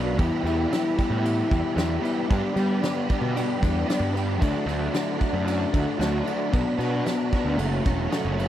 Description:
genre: indie rock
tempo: 114 BPM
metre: 4/4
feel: straight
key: unclear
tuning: A4 = 437 Hz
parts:
  - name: tonewheel organ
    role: sustained chords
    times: 0.0-8.5 s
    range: F#4 to B5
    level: -38 LUFS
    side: equal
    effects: chorus vibrato, fast rotary speaker
  - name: electric guitar through a small old amp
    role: riff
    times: 0.0-8.5 s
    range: F#2 to F#4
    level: -27 LUFS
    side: left 5 dB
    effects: none
  - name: overdriven electric guitar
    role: riff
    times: 0.0-8.5 s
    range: E2 to G4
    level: -29 LUFS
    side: right 6 dB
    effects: ensemble chorus
  - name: fuzz picked electric bass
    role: bass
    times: 0.0-8.5 s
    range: E1 to G3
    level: -27 LUFS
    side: right 1 dB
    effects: overdrive
  - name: soft brush drum kit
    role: drums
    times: 0.2-8.5 s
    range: crash cymbal, kick drum, ride cymbal, snare drum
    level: -29 LUFS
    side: equal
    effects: none
room: little or no reverb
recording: dry, close 1970s-style studio recording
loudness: -22 LUFS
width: side -11 dB against mid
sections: 0.0-8.5 A section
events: none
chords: 0.2 Em; 2.3 G; 4.4 D; 6.5 Bm; 7.6 F#m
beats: | 0.19 0.71 1.24 1.77 | 2.30 2.83 3.35 3.88 | 4.41 4.94 5.47 6.00 | 6.53 7.06 7.59 8.12

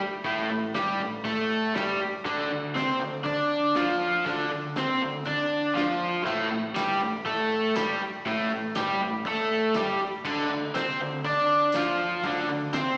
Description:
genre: garage rock duo or trio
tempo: 120 BPM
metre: 4/4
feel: straight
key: unclear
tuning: A4 = 441 Hz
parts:
  - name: raw garage guitar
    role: riff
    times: 0.0-13.0 s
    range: A2 to D5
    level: -28 LUFS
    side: equal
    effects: overdrive, slapback echo
  - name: growling picked electric bass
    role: bass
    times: 0.0-13.0 s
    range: A1 to D3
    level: -39 LUFS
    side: equal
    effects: overdrive
  - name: cloth-damped thuddy drum kit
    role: drums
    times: 0.2-12.9 s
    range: crash cymbal, hi-hat, kick drum, snare drum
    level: -39 LUFS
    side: equal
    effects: slapback echo
  - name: tambourine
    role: percussion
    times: 6.8-12.8 s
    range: none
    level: -50 LUFS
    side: equal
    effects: none
room: moderate lush hall reverb, RT60 1.5 s, studio ambience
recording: live gig heard through the venue's PA, recital hall reverb, small speaker sound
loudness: -27 LUFS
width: mono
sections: 0.0-13.0 A section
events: none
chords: 0.0 Gsus2/A; 2.3 Dm7; 6.3 Gsus2/A; 10.2 Dm7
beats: | 0.25 0.76 1.26 1.76 | 2.26 2.76 3.26 3.76 | 4.26 4.76 5.26 5.76 | 6.26 6.76 7.26 7.75 | 8.25 8.75 9.25 9.75 | 10.24 10.74 11.24 11.74 | 12.24 12.73

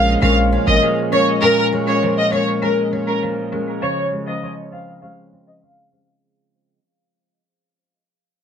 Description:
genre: dancehall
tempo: 100 BPM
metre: 4/4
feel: straight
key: Bb minor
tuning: A4 = 440 Hz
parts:
  - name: warm studio violin section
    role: melody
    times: 0.0-6.0 s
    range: Bb4 to F5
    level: -18 LUFS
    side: equal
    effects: dub echo
  - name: marimba with medium mallets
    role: accompaniment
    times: 0.0-6.0 s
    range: F3 to C5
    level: -21 LUFS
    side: left 5 dB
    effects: dub echo
  - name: fingerpicked steel-string acoustic guitar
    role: arpeggios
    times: 0.0-6.8 s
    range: Bb2 to Db4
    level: -24 LUFS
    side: right 5 dB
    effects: dub echo
  - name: hard-hitting 808-style bass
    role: bass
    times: 0.0-0.8 s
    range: Ab1 to Bb1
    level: -18 LUFS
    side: equal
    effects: none
room: moderate spring reverb, RT60 1.1 s, studio reverb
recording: echo-heavy mix, low-pass filter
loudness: -15 LUFS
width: side -8 dB against mid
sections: 0.0-1.4 A section; 1.4-6.2 B section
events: fade-out 1.4-6.2; filter sweep 1.4-6.2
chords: 0.0 Bbm7; 3.8 Dbmaj7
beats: 0.22 0.82 | 1.42 2.02 2.62 3.22 | 3.82 4.42 5.02 5.62

